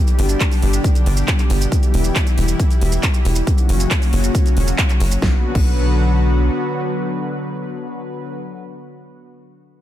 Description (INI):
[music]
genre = uplifting trance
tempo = 137 BPM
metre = 4/4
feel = straight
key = B minor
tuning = A4 = 437 Hz
[part]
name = lush unison pad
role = sustained chords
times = 0.0-8.4 s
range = A#2 to B4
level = -22 LUFS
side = left 1 dB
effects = chorus, sidechain pumping
[part]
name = big-room dance drum kit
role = drums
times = 0.1-5.7 s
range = crash cymbal, handclaps, hi-hat, snare drum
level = -25 LUFS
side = equal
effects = none
[part]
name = maracas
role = percussion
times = 0.1-5.2 s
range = none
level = -30 LUFS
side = right 5 dB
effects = none
[part]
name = tight sequencer bass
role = bass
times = 0.2-6.5 s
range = E1 to B1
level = -17 LUFS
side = equal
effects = sidechain pumping
[part]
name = electronic kick drum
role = drums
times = 0.4-5.7 s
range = none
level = -16 LUFS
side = equal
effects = none
[sound]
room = digital ambience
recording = none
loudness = -15 LUFS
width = side -12 dB against mid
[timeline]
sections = 0.0-5.2 A section; 5.2-8.7 B section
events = none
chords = 0.0 G; 1.7 Em; 3.5 F#; 5.2 Bm